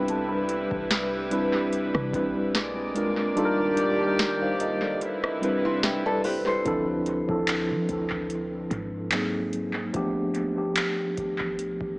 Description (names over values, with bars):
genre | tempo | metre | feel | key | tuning
contemporary R&B | 73 BPM | 4/4 | swing 54% on 16ths | D dorian | A4 = 440 Hz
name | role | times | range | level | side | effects
mellow tine electric piano | accompaniment | 0.0-12.0 s | F3 to B5 | -26 LUFS | equal | medium stereo tremolo, analog delay
warm studio string section | sustained chords | 0.0-6.6 s | C3 to D5 | -30 LUFS | equal | none
clean 808-style bass | bass | 0.0-12.0 s | F1 to F3 | -38 LUFS | equal | none
booming analog drum machine | drums | 0.1-12.0 s | handclaps, hi-hat, kick drum, rim click, snare drum | -31 LUFS | equal | overdrive, analog delay
nylon-string guitar | arpeggios | 5.6-6.9 s | C4 to C5 | -31 LUFS | left 1 dB | analog delay
room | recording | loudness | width
light reverb | echo-heavy mix, small speaker sound | -24 LUFS | side -25 dB against mid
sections
0.0-6.7 A section; 6.7-12.0 B section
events
kick muted 3.4-6.7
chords
0.0 Cmaj7; 2.5 Bb7; 3.4 Ebmaj7; 5.0 Cmaj7; 6.7 Dm7; 9.1 G#9; 9.9 G7